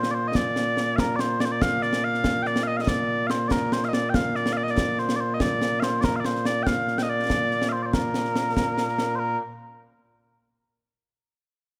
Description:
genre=scottish traditional, Scottish pipe music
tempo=95 BPM (dotted quarters)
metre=6/8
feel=straight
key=Bb major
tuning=A4 = 441 Hz
part: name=mellow small bagpipes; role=melody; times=0.0-9.4 s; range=Bb2 to G5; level=-26 LUFS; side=equal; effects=none
part: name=concert snare drum and concert bass drum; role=drums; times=0.0-9.1 s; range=none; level=-30 LUFS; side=equal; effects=none
room=moderate recital hall reverb, RT60 1.6 s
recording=none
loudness=-25 LUFS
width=mono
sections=0.0-9.2 A section; 9.2-10.5 B section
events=none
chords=none

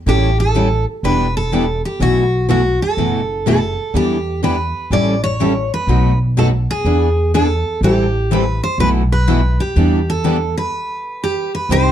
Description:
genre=acoustic string swing (jazz manouche)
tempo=124 BPM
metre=4/4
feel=swing 65% on 8ths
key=E minor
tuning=A4 = 438 Hz
part: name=picked steel-string acoustic guitar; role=melody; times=0.1-11.9 s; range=F#4 to D5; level=-19 LUFS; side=right 1 dB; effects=plate reverb
part: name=picked steel-string acoustic guitar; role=accompaniment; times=0.1-11.9 s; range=B2 to A4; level=-20 LUFS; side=left 5 dB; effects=none
part: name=picked steel-string acoustic guitar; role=accompaniment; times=0.1-11.9 s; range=B2 to B4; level=-22 LUFS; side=right 6 dB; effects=none
part: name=upright bass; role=bass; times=0.1-11.9 s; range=E1 to E2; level=-17 LUFS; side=equal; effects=none
room=moderate club reverb, RT60 0.6 s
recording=dark, warm production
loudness=-14 LUFS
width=side -10 dB against mid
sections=0.0-11.7 A section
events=stop 10.7-11.7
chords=0.1 A7; 1.0 Em7; 2.0 B7sus4; 3.9 Em7; 4.9 A7; 5.9 B7; 6.9 E7; 7.8 Am7; 8.8 B7sus4; 9.8 Em7; 10.7 N.C.

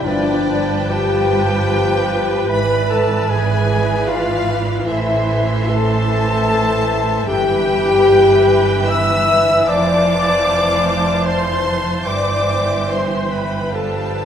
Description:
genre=classical, slow romantic movement for symphony orchestra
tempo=75 BPM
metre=3/4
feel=uneven beats, rubato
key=unclear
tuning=A4 = 440 Hz
part: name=warm studio violin section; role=melody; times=0.0-14.2 s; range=D5 to E6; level=-25 LUFS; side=left 2 dB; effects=none
part: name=clear clarinet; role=second line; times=0.0-14.2 s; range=D4 to E5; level=-26 LUFS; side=left 1 dB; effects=none
part: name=mellow cor anglais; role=second line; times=0.0-14.2 s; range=B4 to A5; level=-29 LUFS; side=right 4 dB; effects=none
part: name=silver concert flute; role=second line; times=0.0-14.2 s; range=D5 to E6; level=-25 LUFS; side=left 1 dB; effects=none
part: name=warm studio violin section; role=second line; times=0.0-14.2 s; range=D5 to C6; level=-28 LUFS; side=equal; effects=none
part: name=warm bassoon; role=accompaniment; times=0.0-14.2 s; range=E3 to F3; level=-25 LUFS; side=right 2 dB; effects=none
part: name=warm studio viola section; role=accompaniment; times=0.0-14.2 s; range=E3 to C5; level=-25 LUFS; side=right 2 dB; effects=none
part: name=mellow French horn section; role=sustained chords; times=0.0-14.2 s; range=D4 to E5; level=-18 LUFS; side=left 3 dB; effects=none
part: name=clear studio cello section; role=bass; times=0.0-14.2 s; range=F2 to A2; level=-23 LUFS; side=right 3 dB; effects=none
part: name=rich studio double bass section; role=bass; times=0.0-14.2 s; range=F1 to A1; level=-24 LUFS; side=right 3 dB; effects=none
part: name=timpani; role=percussion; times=0.0-1.3, 7.3-8.4 s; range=G2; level=-34 LUFS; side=left 2 dB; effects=none
room=wet recital hall reverb, RT60 1.4 s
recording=none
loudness=-14 LUFS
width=side -8 dB against mid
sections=0.0-14.2 A section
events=none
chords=0.0 G9; 2.5 E7/G#; 4.9 Am; 7.3 Em/G; 9.7 Fmaj7; 12.1 C/G; 13.7 G7

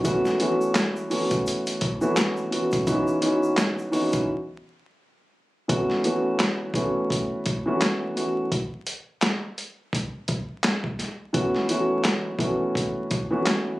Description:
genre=hip hop, boom-bap hip-hop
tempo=85 BPM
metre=4/4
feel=swing 58% on 16ths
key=unclear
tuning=A4 = 440 Hz
part: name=dark concert grand piano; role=accompaniment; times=0.0-13.8 s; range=E3 to F#4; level=-23 LUFS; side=equal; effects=cassette tape, high-pass filter, low-pass filter
part: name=boom bap sampler-style drum kit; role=drums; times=0.0-13.7 s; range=handclaps, hi-hat, kick drum, snare drum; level=-26 LUFS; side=equal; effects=none
part: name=egg shaker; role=percussion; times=0.0-4.3 s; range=none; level=-46 LUFS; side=left 3 dB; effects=none
room=light reverb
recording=recorded on a phone in the room, club reverb, vinyl crackle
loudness=-22 LUFS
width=side -18 dB against mid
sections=0.0-5.7 A section; 5.7-13.8 B section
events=break 4.3-5.7, 8.5-11.3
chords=0.0 B9sus4; 2.9 C#m11; 5.7 B9sus4; 8.5 N.C.; 11.3 B9sus4

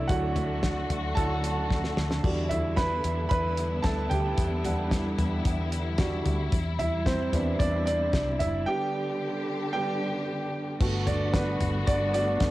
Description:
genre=piano-driven pop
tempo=112 BPM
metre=4/4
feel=straight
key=G major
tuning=A4 = 440 Hz
part: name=warm concert grand piano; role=accompaniment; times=0.0-12.5 s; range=E3 to B5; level=-29 LUFS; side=right 2 dB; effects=none
part: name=warm studio string section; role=sustained chords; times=0.0-12.5 s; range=C3 to G4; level=-33 LUFS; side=left 1 dB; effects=none
part: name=vintage muted fingered electric bass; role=bass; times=0.0-12.5 s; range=F#1 to E2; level=-30 LUFS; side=equal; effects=none
part: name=damped 70s drum kit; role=drums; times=0.1-12.5 s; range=crash cymbal, hi-hat, kick drum, snare drum, splash cymbal, toms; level=-29 LUFS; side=left 1 dB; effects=none
room=light reverb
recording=home recording on cassette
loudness=-25 LUFS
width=side -16 dB against mid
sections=0.0-10.8 A section; 10.8-12.5 A section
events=grand piano solo 0.0-10.8, 10.8-12.5; drum fill 1.7-2.2; break 8.7-10.8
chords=0.0 Dadd9; 2.2 Em7; 6.5 Cmaj7/E; 8.7 G; 10.8 Gmaj7

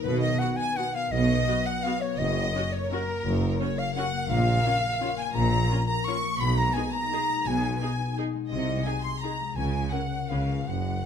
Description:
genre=classical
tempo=169 BPM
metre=3/4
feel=uneven beats, rubato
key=F# major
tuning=A4 = 440 Hz
part: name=rich chamber violin section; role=melody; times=0.0-11.1 s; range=A#4 to C#6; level=-38 LUFS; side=left 2 dB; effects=none
part: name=concert flute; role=second line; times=0.0-11.1 s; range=A#4 to C#6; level=-30 LUFS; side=left 2 dB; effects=none
part: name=rich chamber violin section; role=second line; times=0.0-11.1 s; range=A#4 to C#6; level=-35 LUFS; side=equal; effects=none
part: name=concert harp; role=arpeggios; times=0.0-11.1 s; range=F#2 to D#5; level=-33 LUFS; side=left 13 dB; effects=none
part: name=rich symphonic cello section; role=bass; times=0.0-11.0 s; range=F#2 to C#3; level=-31 LUFS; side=right 2 dB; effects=none
part: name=warm chamber double bass section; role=bass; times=0.0-11.0 s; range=F#1 to C#2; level=-31 LUFS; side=right 2 dB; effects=none
part: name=warm tuba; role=bass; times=0.0-11.0 s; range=F#1 to C#2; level=-34 LUFS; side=right 6 dB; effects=none
part: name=rich chamber viola section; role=accompaniment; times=0.4-10.4 s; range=B3 to B4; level=-36 LUFS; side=equal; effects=none
part: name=timpani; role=percussion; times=2.2-2.7, 9.6-10.1 s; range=F#2 to C#3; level=-42 LUFS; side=left 2 dB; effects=none
room=moderate recital hall reverb, RT60 1.6 s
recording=close, detailed microphones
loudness=-24 LUFS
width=side -8 dB against mid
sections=0.0-11.1 A section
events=none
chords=0.0 B; 2.2 F#; 4.3 A#m; 6.4 G#m/B; 8.5 G#7/B#; 9.6 F#/C#; 10.3 C#7

